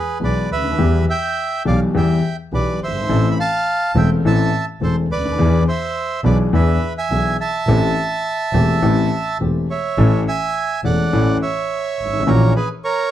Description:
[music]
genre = tango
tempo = 105 BPM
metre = 4/4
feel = rubato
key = A minor, A major from 10.0 s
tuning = A4 = 440 Hz
[part]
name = bandoneon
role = melody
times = 0.0-13.1 s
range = G#4 to B5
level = -21 LUFS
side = right 3 dB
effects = none
[part]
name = warm concert grand piano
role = accompaniment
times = 0.2-12.5 s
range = E1 to A4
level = -18 LUFS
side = left 2 dB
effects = none
[part]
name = rich double bass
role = bass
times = 0.2-12.5 s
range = E1 to E2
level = -19 LUFS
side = right 1 dB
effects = none
[sound]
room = moderate studio ambience, RT60 0.5 s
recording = dark, warm production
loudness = -15 LUFS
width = side -12 dB against mid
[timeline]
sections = 0.0-10.0 A section; 10.0-13.1 B section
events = none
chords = 0.0 E; 0.8 Em; 3.1 Am; 5.4 E7; 7.7 Am7; 10.0 A; 12.3 F#7/A#

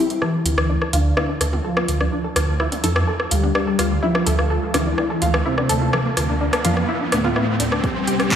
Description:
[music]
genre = melodic techno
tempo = 126 BPM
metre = 4/4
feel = straight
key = D minor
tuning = A4 = 440 Hz
[part]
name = analog synth brass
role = melody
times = 0.0-8.4 s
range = A2 to G4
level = -24 LUFS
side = left 1 dB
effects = chorus, sidechain pumping, dub echo
[part]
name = analog pluck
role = arpeggios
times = 0.0-8.4 s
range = C4 to C5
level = -26 LUFS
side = equal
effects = lush chorus, sidechain pumping, dub echo
[part]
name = filtered dub chord stab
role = stabs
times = 0.0-8.4 s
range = E3 to F4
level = -27 LUFS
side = left 1 dB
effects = phaser, analog chorus, sidechain pumping, dub echo
[part]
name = techno drum kit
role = drums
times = 0.1-8.4 s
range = handclaps, hi-hat, rim click, toms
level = -23 LUFS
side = equal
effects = high-pass filter on hats, small room reverb, high-pass filter on snare, high-pass filter on toms
[part]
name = riser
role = sound effects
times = 2.3-8.4 s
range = none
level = -28 LUFS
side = right 2 dB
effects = none
[part]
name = dark detuned saw bass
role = bass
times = 0.5-8.4 s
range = C2 to F2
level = -22 LUFS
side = right 1 dB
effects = sidechain pumping
[part]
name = electronic kick drum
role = drums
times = 7.8-8.4 s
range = none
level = -23 LUFS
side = equal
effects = small room reverb
[sound]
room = wet concert hall reverb, RT60 1.9 s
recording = played on a big sound system in a bare room, large studio reverb, high-pass filter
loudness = -17 LUFS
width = side -9 dB against mid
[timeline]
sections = 0.2-8.4 A section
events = build-up 0.2-8.4; filter sweep on synth pluck 0.2-8.4; riser 2.3-8.4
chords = 0.2 Dmadd9; 7.8 C

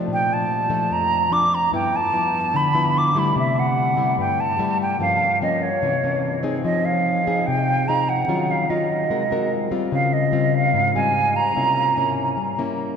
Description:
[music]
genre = bossa nova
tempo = 146 BPM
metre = 4/4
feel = straight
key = unclear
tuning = A4 = 441 Hz
[part]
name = nylon-string guitar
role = accompaniment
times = 0.0-13.0 s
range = F2 to Bb4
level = -22 LUFS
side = left 3 dB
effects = none
[part]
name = hollow concert flute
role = melody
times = 0.1-12.2 s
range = Db5 to D6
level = -20 LUFS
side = right 2 dB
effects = none
[sound]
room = wet cathedral reverb, RT60 5.6 s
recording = recorded in a church or concert hall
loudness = -18 LUFS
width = side -7 dB against mid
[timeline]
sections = 0.0-13.0 A section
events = none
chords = 0.1 Bbmaj7; 1.7 G13; 3.4 C6; 5.0 Gm7b5; 5.8 C7b9; 6.6 Fm7; 8.3 Ebm9; 9.1 Ab9; 9.9 Dbmaj9#11; 11.6 C7b9

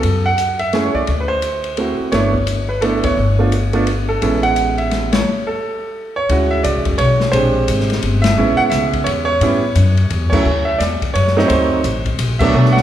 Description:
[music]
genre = jazz piano trio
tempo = 173 BPM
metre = 3/4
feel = swing 62% on 8ths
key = unclear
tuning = A4 = 444 Hz
[part]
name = clear baby grand piano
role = melody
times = 0.0-12.8 s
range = C#3 to F#5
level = -16 LUFS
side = right 2 dB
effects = none
[part]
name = upright bass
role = bass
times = 0.0-12.8 s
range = F#1 to A2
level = -18 LUFS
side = left 1 dB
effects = none
[part]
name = open jazz drum kit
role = drums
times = 0.0-12.8 s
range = crash cymbal, hi-hat, kick drum, ride cymbal, snare drum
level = -23 LUFS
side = left 4 dB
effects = none
[sound]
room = wet recital hall reverb, RT60 1.6 s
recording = recorded in a church or concert hall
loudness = -14 LUFS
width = side -11 dB against mid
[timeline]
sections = 0.0-6.3 A section; 6.3-12.8 B section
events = band accent 3.0, 5.1, 8.2, 10.3, 12.4; stop 5.3-6.3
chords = 0.0 F#m9; 1.1 D7; 2.1 G69; 4.2 Amaj7; 6.3 Dmaj9#11; 7.3 Bb13; 8.4 Amaj7; 9.4 A; 10.5 Dmaj9; 11.5 D7b9

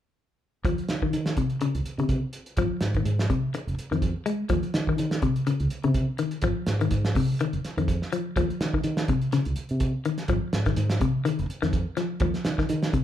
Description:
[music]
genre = afrobeat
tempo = 124 BPM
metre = 4/4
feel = swing 55% on 16ths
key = unclear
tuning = A4 = 440 Hz
[part]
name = fingered electric bass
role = bass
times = 0.6-12.9 s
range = F1 to Eb3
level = -28 LUFS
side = right 1 dB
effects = none
[part]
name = cloth-damped thuddy drum kit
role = drums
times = 0.6-13.0 s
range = hi-hat, kick drum, snare drum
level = -29 LUFS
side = right 2 dB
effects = none
[part]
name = semi-hollow electric guitar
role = arpeggios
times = 0.7-13.0 s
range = C3 to Ab3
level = -27 LUFS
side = left 4 dB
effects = none
[sound]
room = moderate large studio reverb, RT60 0.8 s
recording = band playing live in one room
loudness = -24 LUFS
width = side -11 dB against mid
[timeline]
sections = 0.7-13.0 A section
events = none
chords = 0.7 Dbmaj7sus2; 2.6 Ab5; 4.5 Dbmaj7sus2; 6.4 Ab5; 8.4 Dbmaj7sus2; 10.3 Ab5; 12.2 Dbmaj9 (rootless)

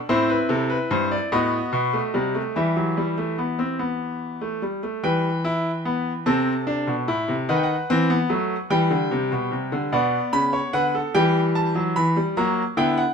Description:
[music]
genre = classical, baroque-style 4-part fugue for grand piano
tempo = 49 BPM (dotted quarters)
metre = 6/8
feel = straight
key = E minor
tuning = A4 = 440 Hz
[part]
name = bright grand piano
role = solo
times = 0.0-13.1 s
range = G2 to B5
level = -20 LUFS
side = equal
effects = none
[sound]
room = moderate stone room reverb, RT60 1.0 s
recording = none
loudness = -20 LUFS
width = side -6 dB against mid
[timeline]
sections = 0.0-5.0 A section; 5.0-13.1 B section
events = none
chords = 0.1 Am11; 1.3 B7/A; 2.6 Em; 6.3 Am/C; 7.5 B7/D#; 8.7 Em; 9.9 Bm; 11.1 Em; 12.4 F#7

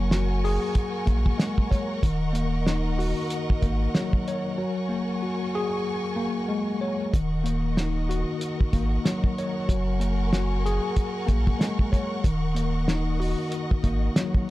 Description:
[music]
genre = hip hop, boom-bap hip-hop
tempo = 94 BPM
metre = 4/4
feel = swing 59% on 16ths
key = Eb minor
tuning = A4 = 440 Hz
[part]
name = tine electric piano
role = accompaniment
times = 0.0-14.5 s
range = Eb3 to Db5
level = -27 LUFS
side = left 2 dB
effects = medium stereo tremolo, cassette tape
[part]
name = warm studio string section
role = sustained chords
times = 0.0-14.5 s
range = Bb4 to Db6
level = -34 LUFS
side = equal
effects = none
[part]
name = warm sub bass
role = bass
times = 0.0-14.1 s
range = Eb1 to Bb1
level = -26 LUFS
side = equal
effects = none
[part]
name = cloth-damped thuddy drum kit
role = drums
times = 0.1-14.5 s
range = hi-hat, kick drum, snare drum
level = -24 LUFS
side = equal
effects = none
[sound]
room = small room ambience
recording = dry, gritty hardware recording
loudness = -23 LUFS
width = side -17 dB against mid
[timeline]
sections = 0.0-14.5 A section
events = break 4.6-7.1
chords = 0.0 Gbadd9; 2.0 Ebm7; 4.6 Gbadd9; 7.1 Ebm7; 9.7 Gbadd9; 12.2 Ebm7

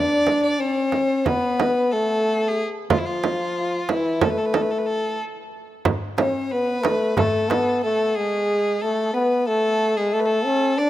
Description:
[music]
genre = Turkish makam ensemble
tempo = 183 BPM (eighths)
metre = 9/8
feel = straight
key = unclear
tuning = A4 = 439 Hz
[part]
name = warm trombone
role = melody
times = 0.0-10.9 s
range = E3 to D4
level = -21 LUFS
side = left 1 dB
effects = none
[part]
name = warm violin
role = second line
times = 0.0-10.9 s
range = E4 to D5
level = -27 LUFS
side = left 1 dB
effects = none
[part]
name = frame drum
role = percussion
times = 0.3-7.7 s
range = none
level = -23 LUFS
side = right 6 dB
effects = none
[part]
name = darbuka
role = percussion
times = 5.9-7.7 s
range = none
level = -28 LUFS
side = equal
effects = none
[sound]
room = light reverb, studio reverb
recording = rough home demo mix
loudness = -19 LUFS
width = side -13 dB against mid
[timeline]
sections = 0.0-10.9 A section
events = none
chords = none

